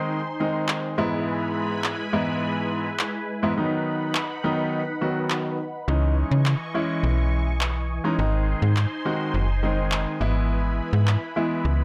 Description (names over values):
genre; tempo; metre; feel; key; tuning
dance-pop; 104 BPM; 4/4; straight; unclear; A4 = 440 Hz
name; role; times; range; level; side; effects
clear baby grand piano; accompaniment; 0.0-11.8 s; G#2 to F#4; -28 LUFS; equal; none
filtered supersaw swell; sustained chords; 0.0-11.8 s; E3 to C#6; -33 LUFS; equal; phaser
electronic handclaps; drums; 0.7-11.2 s; none; -30 LUFS; equal; overdrive
slap-like FM bass; bass; 5.9-11.8 s; F#1 to C#3; -24 LUFS; equal; none
room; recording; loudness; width
light reverb; none; -25 LUFS; mono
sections
0.0-11.8 A section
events
hi-hats muted 3.6-5.9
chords
0.0 G#; 1.0 E/G#; 3.6 B; 5.9 C#madd9; 8.2 G#; 10.2 E/G#